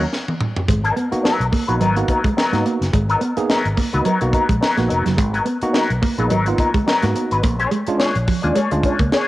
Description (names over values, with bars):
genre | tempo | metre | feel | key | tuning
funk | 107 BPM | 4/4 | swing 56% on 16ths | unclear | A4 = 441 Hz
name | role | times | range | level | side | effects
electric guitar with an envelope filter | accompaniment | 0.0-9.3 s | Gb3 to D5 | -21 LUFS | left 3 dB | wah, cassette tape
tine electric piano | stabs | 0.0-9.3 s | Ab3 to Ab4 | -22 LUFS | right 2 dB | overdrive, medium stereo tremolo, cassette tape
fingered electric bass | bass | 0.0-9.1 s | F1 to Ab2 | -21 LUFS | equal | none
tight funk drum kit | drums | 0.1-9.3 s | hi-hat, kick drum, snare drum, toms | -22 LUFS | equal | none
mellow electric guitar | riff | 0.7-9.1 s | F3 to Cb4 | -23 LUFS | right 3 dB | lush chorus, cassette tape
room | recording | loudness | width
light reverb | home recording on cassette | -16 LUFS | side -16 dB against mid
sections
0.7-9.3 A section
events
band accent 0.0-0.7; drum fill 0.1-0.7; tine electric piano fill 8.8-9.3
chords
0.0 N.C.; 0.7 Abm9; 7.4 Bb7#9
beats
0.12 | 0.68 1.25 1.81 2.37 | 2.93 3.50 4.06 4.62 | 5.18 5.75 6.31 6.87 | 7.44 8.00 8.56 9.13